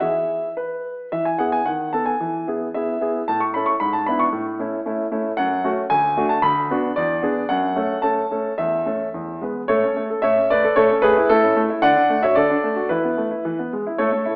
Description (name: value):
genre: classical-period piano sonatina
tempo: 112 BPM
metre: 2/4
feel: straight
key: E major, A major from 5.4 s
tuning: A4 = 440 Hz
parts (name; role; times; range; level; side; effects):
- clear concert grand piano; solo; 0.0-14.4 s; D2 to C#6; -20 LUFS; equal; none
room: wet recital hall reverb, RT60 1.3 s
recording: AM radio sound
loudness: -21 LUFS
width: mono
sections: 0.0-1.1 A section; 1.1-9.7 B section; 9.7-14.4 A section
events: none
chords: 0.0 E; 1.7 B7/D#; 2.2 E; 3.3 A; 3.8 E7/G#; 4.3 A; 5.4 F#m; 5.9 D; 6.4 Bm/D; 7.0 E7; 7.5 F#m; 8.6 A/E; 9.1 E; 9.7 A; 11.8 D; 12.9 Esus4; 13.4 E